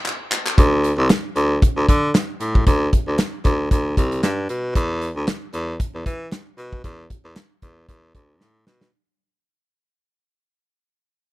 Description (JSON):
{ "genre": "early-eighties boogie funk", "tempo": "115 BPM", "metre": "4/4", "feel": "swing 56% on 16ths", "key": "unclear", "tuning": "A4 = 441 Hz", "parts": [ { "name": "modern studio drum kit", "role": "drums", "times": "0.1-8.9 s", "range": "handclaps, hi-hat, kick drum, snare drum", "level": "-18 LUFS", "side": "equal", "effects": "none" }, { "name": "bright baritone saxophone", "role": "bass", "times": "0.6-8.9 s", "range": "C2 to E3", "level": "-20 LUFS", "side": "equal", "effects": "none" } ], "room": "little or no reverb", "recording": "none", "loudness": "-17 LUFS", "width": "side -18 dB against mid", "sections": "0.6-8.9 A section", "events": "drum fill 0.0-0.6, 8.4-8.9; band accent 0.0-0.6; fade-out 0.6-8.9", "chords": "none", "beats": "0.06 | 0.58 1.10 1.62 2.15 | 2.67 3.19 3.71 4.23 | 4.75 5.28 5.80 6.32 | 6.84 7.36 7.88 8.41" }